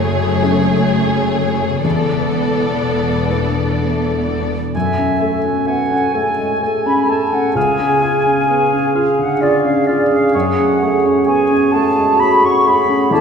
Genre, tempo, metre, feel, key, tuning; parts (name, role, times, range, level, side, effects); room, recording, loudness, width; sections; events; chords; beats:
cinematic; 43 BPM (dotted quarters); 6/8; rubato; F# minor; A4 = 439 Hz
dark symphonic violin section; melody; 0.0-4.5 s; C#5 to D5; -24 LUFS; left 4 dB
warm symphonic violin section; second line; 0.0-4.5 s; G#4 to A4; -22 LUFS; left 2 dB
felt-muted upright piano; accompaniment; 0.0-13.2 s; C#2 to B4; -20 LUFS; left 1 dB
warm symphonic viola section; accompaniment; 0.0-4.5 s; A3 to B3; -22 LUFS; right 1 dB
concert harp; arpeggios; 0.0-13.2 s; E2 to F#5; -24 LUFS; left 4 dB
rich symphonic cello section; bass; 0.0-4.5 s; E2 to F#2; -23 LUFS; left 2 dB
warm symphonic double bass section; bass; 0.0-4.5 s; E1 to F#1; -23 LUFS; right 1 dB
clear clarinet; second line; 4.8-13.2 s; E4 to A4; -21 LUFS; equal
mellow cor anglais; second line; 4.8-13.2 s; C#5 to G#5; -22 LUFS; right 3 dB
small flute group; second line; 4.8-13.2 s; D5 to C#6; -17 LUFS; equal
mellow French horn section; sustained chords; 6.2-13.2 s; F#4 to A4; -19 LUFS; right 3 dB
wet scoring stage reverb, RT60 2.0 s; recorded in a church or concert hall; -13 LUFS; side -6 dB against mid
0.0-4.7 A section; 4.7-13.2 B section
0.0 F#madd9; 1.8 E7sus4; 4.7 F#madd9; 7.6 C#; 10.3 F#madd9
0.42 | 1.85 3.29 | 4.75 6.15 | 7.56 8.95 | 10.34 11.73 | 13.11